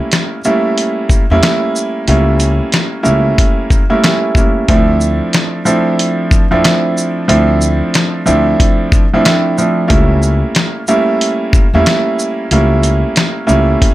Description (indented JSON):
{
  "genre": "hip hop, boom-bap hip-hop",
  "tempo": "92 BPM",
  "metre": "4/4",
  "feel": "swing 62% on 16ths",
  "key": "D minor",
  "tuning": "A4 = 441 Hz",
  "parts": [
    { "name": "warm upright piano", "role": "accompaniment", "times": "0.0-13.9 s", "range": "F3 to E4", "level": "-13 LUFS", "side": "right 1 dB", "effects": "none" },
    { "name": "dusty soul sampler-style drum kit", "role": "drums", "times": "0.1-13.9 s", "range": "hi-hat, kick drum, rim click, shaker, snare drum", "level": "-13 LUFS", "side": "equal", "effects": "none" },
    { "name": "upright bass", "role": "bass", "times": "1.3-13.7 s", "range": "C#2 to F2", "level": "-13 LUFS", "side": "left 1 dB", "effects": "none" }
  ],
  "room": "little or no reverb",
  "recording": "none",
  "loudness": "-10 LUFS",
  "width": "side -16 dB against mid",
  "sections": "0.0-4.7 A section; 4.7-13.9 B section",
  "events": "none",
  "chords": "0.0 A7b9; 4.7 Dm9; 9.9 A7b9/C#"
}